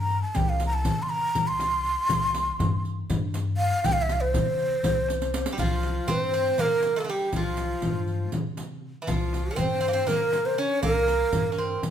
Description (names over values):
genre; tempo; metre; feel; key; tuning
Turkish makam ensemble; 241 BPM (eighths); 7/8; straight; C makam hicaz; A4 = 440 Hz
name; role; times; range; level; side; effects
breathy ney; melody; 0.0-11.8 s; F4 to C6; -25 LUFS; equal; none
upright bass; bass; 0.0-11.9 s; C2 to C3; -30 LUFS; left 1 dB; none
riq; percussion; 0.1-11.9 s; none; -38 LUFS; right 4 dB; none
darbuka; percussion; 0.4-11.9 s; none; -32 LUFS; equal; none
frame drum; percussion; 0.4-11.9 s; none; -35 LUFS; equal; none
Greek bouzouki; second line; 5.5-11.8 s; E3 to Db4; -31 LUFS; right 2 dB; none
room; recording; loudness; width
moderate large studio reverb, RT60 1.1 s; band playing live in one room; -23 LUFS; side -9 dB against mid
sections
0.0-5.6 A section; 5.6-11.9 B section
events
drum fill 5.1-5.6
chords
none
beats
0.11 | 0.36 0.61 0.86 1.10 1.35 1.60 1.85 | 2.10 2.35 2.60 2.85 3.10 3.35 3.60 | 3.85 4.09 4.34 4.59 4.84 5.09 5.34 | 5.59 5.84 6.09 6.34 6.59 6.83 7.08 | 7.33 7.58 7.83 8.08 8.33 8.58 8.83 | 9.08 9.33 9.58 9.83 10.08 10.33 10.58 | 10.83 11.08 11.33 11.58 11.83